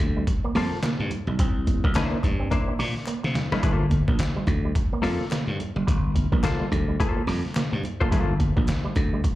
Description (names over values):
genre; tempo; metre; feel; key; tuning
funk; 107 BPM; 4/4; swing 60% on 16ths; G dorian; A4 = 440 Hz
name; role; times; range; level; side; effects
electric guitar with an envelope filter; riff; 0.0-9.3 s; G3 to C4; -32 LUFS; right 5 dB; none
slap bass; bass; 0.0-9.2 s; F#1 to C3; -26 LUFS; equal; none
trip hop sampler-style drum kit; drums; 0.0-9.4 s; hi-hat, kick drum, snare drum; -24 LUFS; equal; overdrive
congas; percussion; 0.3-9.4 s; none; -35 LUFS; right 5 dB; none
semi-hollow electric guitar; accompaniment; 0.6-8.3 s; Bb3 to C5; -29 LUFS; left 5 dB; spring reverb, slapback echo
group handclap; percussion; 0.8-8.8 s; none; -44 LUFS; left 4 dB; none
room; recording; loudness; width
little or no reverb; live gig heard through the venue's PA, club reverb; -22 LUFS; side -16 dB against mid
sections
0.0-3.6 A section; 3.6-9.4 A section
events
drum fill 3.1-3.6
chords
0.0 Gm11; 1.4 C9; 3.6 Gm11